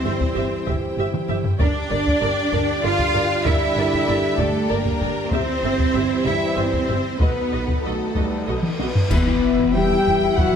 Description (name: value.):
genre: cinematic, epic orchestral film score.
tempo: 96 BPM.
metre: 3/4.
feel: straight.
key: unclear.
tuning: A4 = 440 Hz.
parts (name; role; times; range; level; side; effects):
rich studio violin section; melody; 0.0-10.6 s; A4 to G5; -30 LUFS; left 5 dB; none.
rich symphonic violin section; second line; 0.0-10.6 s; A4 to G5; -29 LUFS; left 2 dB; none.
warm symphonic viola section; accompaniment; 0.0-10.4 s; E4 to E5; -30 LUFS; equal; none.
clear symphonic string section; sustained chords; 0.0-10.6 s; D4 to G5; -32 LUFS; right 1 dB; none.
dark French horn section; sustained chords; 0.0-10.6 s; G3 to D5; -25 LUFS; left 5 dB; none.
dark trombone section; sustained chords; 0.0-10.6 s; D3 to B3; -30 LUFS; right 3 dB; none.
rich symphonic cello section; bass; 0.0-10.6 s; B2 to F4; -24 LUFS; right 4 dB; none.
warm studio double bass section; bass; 0.0-10.6 s; G1 to E2; -28 LUFS; right 3 dB; none.
taiko ensemble; drums; 0.2-10.6 s; none; -24 LUFS; equal; none.
cymbal swell, clash cymbals and concert bass drum; percussion; 5.3-10.3 s; none; -30 LUFS; equal; none.
cymbal swell and sub drop; sound effects; 8.3-10.6 s; none; -32 LUFS; equal; none.
large flute ensemble; second line; 9.1-10.6 s; B4 to G5; -27 LUFS; equal; none.
bright trumpet section; stabs; 9.1-10.6 s; E5; -30 LUFS; equal; none.
room: moderate scoring stage reverb, RT60 1.7 s.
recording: none.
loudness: -18 LUFS.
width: side -7 dB against mid.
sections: 0.0-9.1 A section; 9.1-10.6 B section.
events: drum fill 1.1-1.6, 8.6-9.1; cymbal swell 8.3-9.1; band accent 9.1-9.8; impact 9.1-10.6.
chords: 0.0 C/G; 1.6 Gm; 5.3 C/G; 7.2 B7; 9.1 Em.